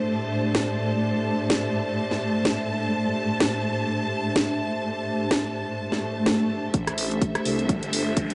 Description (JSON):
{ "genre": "bass house", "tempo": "126 BPM", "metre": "4/4", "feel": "swing 57% on 16ths", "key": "A minor", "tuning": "A4 = 440 Hz", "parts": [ { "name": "clear symphonic string section", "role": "sustained chords", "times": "0.0-8.3 s", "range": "A2 to A5", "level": "-28 LUFS", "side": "equal", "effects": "sidechain pumping" }, { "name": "warbly tape-like pad", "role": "texture", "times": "0.0-8.3 s", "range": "A3 to E5", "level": "-33 LUFS", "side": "equal", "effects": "chorus, built-in reverb, phaser, sidechain pumping" }, { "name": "house drum kit", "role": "drums", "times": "0.5-8.3 s", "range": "hi-hat, rim click, snare drum", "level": "-28 LUFS", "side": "equal", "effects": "none" }, { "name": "swell and riser", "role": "sound effects", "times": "6.0-8.3 s", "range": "none", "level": "-32 LUFS", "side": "equal", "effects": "none" }, { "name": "phased detuned saw bass", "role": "bass", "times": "6.7-8.3 s", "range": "G1 to C2", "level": "-34 LUFS", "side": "equal", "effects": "phaser, tube saturation, sidechain pumping, high-pass filter" }, { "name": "electronic kick drum", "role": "drums", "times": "6.7-8.3 s", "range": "none", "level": "-27 LUFS", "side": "equal", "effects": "high-pass filter on kick, high-pass filter on room" } ], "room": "moderate lush hall reverb, RT60 2.0 s", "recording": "dark, warm production, nothing above 10.8 kHz", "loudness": "-25 LUFS", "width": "mono", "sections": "0.0-6.7 A section; 6.7-8.3 B section", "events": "swell 6.0-6.7; build-up 6.7-8.3", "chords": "0.0 Am" }